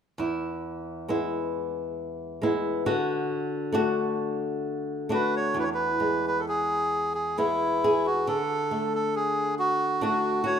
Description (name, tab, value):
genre	celtic folk, Celtic slow air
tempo	68 BPM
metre	3/4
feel	rubato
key	E mixolydian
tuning	A4 = 440 Hz
part	flamenco guitar	accompaniment	0.2-10.6 s	E2 to G#4	-27 LUFS	left 1 dB	none
part	melodica	melody	5.1-10.6 s	E4 to C#5	-25 LUFS	right 1 dB	none
room	moderate recital hall reverb, RT60 1.8 s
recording	minimal, uncompressed stereo recording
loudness	-24 LUFS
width	side -8 dB against mid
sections	0.2-5.5 A section; 5.5-10.6 B section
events	none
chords	0.2 E; 2.9 D; 5.5 E; 8.3 D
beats	| 0.17 1.09 1.99 | 2.86 3.74 4.63 | 5.55 6.45 7.36 | 8.25 9.12 9.99